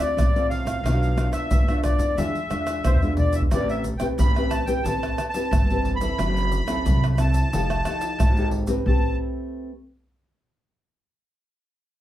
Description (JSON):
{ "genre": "samba and choro", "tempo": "90 BPM", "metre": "4/4", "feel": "straight", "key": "A minor", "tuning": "A4 = 440 Hz", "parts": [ { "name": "accordion", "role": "melody", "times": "0.0-9.2 s", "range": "C5 to B5", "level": "-28 LUFS", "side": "equal", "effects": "light tremolo tuning" }, { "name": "nylon-string guitar", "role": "accompaniment", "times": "0.0-9.7 s", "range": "A2 to B4", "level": "-28 LUFS", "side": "left 1 dB", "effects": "none" }, { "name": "upright bass", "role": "bass", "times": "0.0-9.2 s", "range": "F1 to F2", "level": "-26 LUFS", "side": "equal", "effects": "none" }, { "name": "tube shaker, pandeiro, tamborim and surdo", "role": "percussion", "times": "0.0-9.0 s", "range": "none", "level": "-23 LUFS", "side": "equal", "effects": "none" } ], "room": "wet small room ambience, RT60 0.5 s", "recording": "heard from further back in the room", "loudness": "-20 LUFS", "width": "side -13 dB against mid", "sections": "0.0-3.5 A section; 3.5-8.9 B section; 8.9-11.5 C section", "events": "drum fill 2.8-3.5", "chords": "0.0 Dm7; 0.8 Bm7b5; 2.2 E7b9; 3.5 Am9; 6.2 F#m7b5; 7.5 F9; 8.9 Am9" }